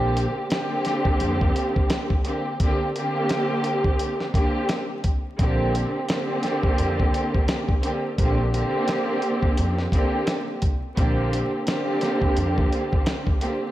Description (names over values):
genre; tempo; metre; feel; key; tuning
hip hop, boom-bap hip-hop; 86 BPM; 4/4; swing 58% on 16ths; Bb major; A4 = 441 Hz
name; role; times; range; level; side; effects
warm studio string section; accompaniment; 0.0-13.7 s; D3 to G4; -24 LUFS; equal; cassette tape, high-pass filter, low-pass filter
upright bass; bass; 0.0-12.6 s; Bb1 to F2; -25 LUFS; equal; none
dusty soul sampler-style drum kit; drums; 0.2-13.6 s; hi-hat, kick drum, snare drum; -24 LUFS; equal; none
room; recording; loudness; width
light reverb; vinyl crackle; -21 LUFS; side -14 dB against mid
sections
0.0-13.7 A section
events
none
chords
0.0 Bb69